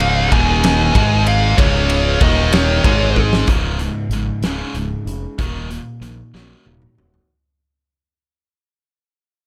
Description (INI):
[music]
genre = quiet-loud alternative rock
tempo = 63 BPM (dotted quarters)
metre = 6/8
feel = straight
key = unclear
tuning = A4 = 444 Hz
[part]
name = biting lead guitar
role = melody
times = 0.0-3.2 s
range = Db5 to Ab5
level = -22 LUFS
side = equal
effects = overdrive, slapback echo
[part]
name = fuzz guitar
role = riff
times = 0.0-3.5 s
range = Db2 to Ab3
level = -27 LUFS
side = equal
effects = distortion
[part]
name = heavy high-gain guitar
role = riff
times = 0.0-3.5 s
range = Db2 to Ab3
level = -24 LUFS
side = equal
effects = distortion
[part]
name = high-gain distorted guitar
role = riff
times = 0.0-6.9 s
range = Db2 to Ab3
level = -24 LUFS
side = equal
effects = distortion
[part]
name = growling fingered electric bass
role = bass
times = 0.0-7.2 s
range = Db1 to Bb1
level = -22 LUFS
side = equal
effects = overdrive
[part]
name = big rock drum kit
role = drums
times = 0.0-7.3 s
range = hi-hat, kick drum, ride cymbal, snare drum, toms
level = -21 LUFS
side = equal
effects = none
[part]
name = electric guitar through a small old amp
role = arpeggios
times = 3.5-7.3 s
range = Db2 to Gb3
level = -36 LUFS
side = equal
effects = none
[sound]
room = little or no reverb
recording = none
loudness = -16 LUFS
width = mono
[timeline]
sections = 0.0-3.5 A section; 3.5-7.3 B section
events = drum fill 3.2-3.5, 6.3-7.3; fade-out 3.5-7.3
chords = 0.0 Db5; 5.4 Ebm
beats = 0.63 | 1.58 2.52 | 3.48 4.43 | 5.38 6.34